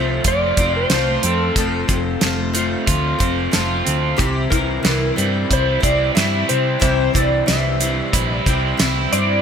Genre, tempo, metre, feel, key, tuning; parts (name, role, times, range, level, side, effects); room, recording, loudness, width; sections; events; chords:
folk rock and heartland rock; 91 BPM; 4/4; straight; F major; A4 = 440 Hz
clean lap steel guitar; melody; 0.0-9.4 s; G4 to E5; -22 LUFS; left 1 dB; analog chorus
picked twelve-string acoustic guitar; accompaniment; 0.0-9.4 s; C3 to C5; -25 LUFS; left 4 dB; lush chorus
crunchy overdriven guitar; riff; 0.0-9.4 s; F2 to F4; -22 LUFS; right 2 dB; lush chorus
hollow-body short-scale fingered electric bass; bass; 0.0-9.4 s; F1 to C3; -22 LUFS; equal
damped 70s drum kit; drums; 0.2-9.3 s; hi-hat, kick drum, snare drum; -20 LUFS; right 1 dB
moderate plate reverb, RT60 2.3 s; bright 1980s-style digital production; -15 LUFS; side -7 dB against mid
0.0-9.4 A section
0.0 F; 4.2 C